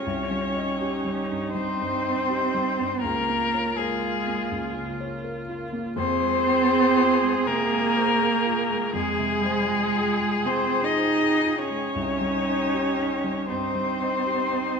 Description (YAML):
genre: neoclassical piano and strings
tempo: 80 BPM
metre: 4/4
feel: rubato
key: F minor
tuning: A4 = 438 Hz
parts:
  - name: muted violin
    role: melody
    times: 0.0-14.8 s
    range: Ab4 to Eb5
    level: -25 LUFS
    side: left 5 dB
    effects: none
  - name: muted cello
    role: second line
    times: 0.0-14.8 s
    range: Ab3 to Eb4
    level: -26 LUFS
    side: right 5 dB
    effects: none
  - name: felt-muted upright piano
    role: accompaniment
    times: 0.0-14.8 s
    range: C2 to Eb5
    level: -32 LUFS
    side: left 1 dB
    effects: none
  - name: muted viola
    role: accompaniment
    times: 0.0-14.8 s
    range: Eb4 to Ab4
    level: -32 LUFS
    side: right 2 dB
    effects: none
  - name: warbly tape-like pad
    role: sustained chords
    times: 0.0-14.8 s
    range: Eb4 to G5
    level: -38 LUFS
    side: right 2 dB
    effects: chorus, built-in reverb
room: moderate concert hall reverb, RT60 1.9 s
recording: minimal, uncompressed stereo recording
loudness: -22 LUFS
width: side -5 dB against mid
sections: 0.0-14.8 A section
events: none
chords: 0.0 Cm; 3.0 Bbm/Db; 6.0 Fmadd9; 12.0 Cm